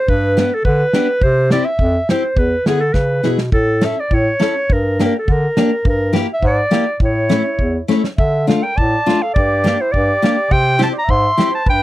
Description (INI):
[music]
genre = alpine folk, alpine dance band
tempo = 104 BPM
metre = 2/4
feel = rubato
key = unclear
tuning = A4 = 440 Hz
[part]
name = warm clarinet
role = melody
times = 0.0-11.8 s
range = G#4 to C6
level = -17 LUFS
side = equal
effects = none
[part]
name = mellow bass clarinet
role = bass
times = 0.1-11.8 s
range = E2 to D3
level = -18 LUFS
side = equal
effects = none
[part]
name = natural country drum kit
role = drums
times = 0.1-11.8 s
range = kick drum, snare drum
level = -17 LUFS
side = equal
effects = none
[part]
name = fingerpicked steel-string acoustic guitar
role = accompaniment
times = 0.4-11.5 s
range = A3 to A4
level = -17 LUFS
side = left 3 dB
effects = none
[part]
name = dark trumpet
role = second line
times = 7.0-11.8 s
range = E4 to E5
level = -26 LUFS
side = right 5 dB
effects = slapback echo
[sound]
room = little or no reverb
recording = dry, close 1970s-style studio recording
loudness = -13 LUFS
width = side -15 dB against mid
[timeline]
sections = 0.0-11.8 A section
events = drum fill 2.9-3.5, 7.9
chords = 0.1 G; 1.2 C; 2.4 E7; 3.5 A; 4.7 Gm; 5.8 Edim/G; 7.0 A; 8.2 Dm; 9.3 Gm; 10.5 C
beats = | 0.08 0.65 | 1.22 1.79 | 2.37 2.94 | 3.53 4.11 | 4.70 5.28 | 5.85 6.42 | 6.99 7.57 | 8.17 8.76 | 9.34 9.92 | 10.50 11.07 | 11.66